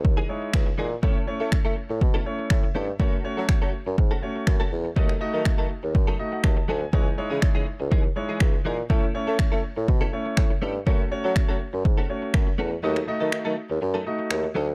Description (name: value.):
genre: dance-pop.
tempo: 122 BPM.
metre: 4/4.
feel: straight.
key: unclear.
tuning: A4 = 445 Hz.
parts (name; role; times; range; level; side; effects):
direct-recorded clean electric guitar; riff; 0.0-14.7 s; E3 to A4; -34 LUFS; equal; ensemble chorus.
mellow bassoon; bass; 0.0-14.7 s; C#2 to A3; -31 LUFS; equal; sidechain pumping.
deep house drum kit; drums; 0.0-14.4 s; finger snaps, kick drum; -24 LUFS; equal; overdrive.
warm concert grand piano; accompaniment; 0.3-14.4 s; G#3 to A5; -33 LUFS; equal; sidechain pumping.
room: little or no reverb.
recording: dark, warm production.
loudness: -24 LUFS.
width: mono.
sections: 0.0-14.7 A section.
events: grand piano fill 2.3-3.0, 5.9-6.9; kick muted 12.8-14.7.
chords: 0.0 C#madd9; 1.0 A; 3.0 F#m; 5.0 D#dim; 6.9 C#madd9; 8.9 A; 10.9 F#m; 12.8 D#dim.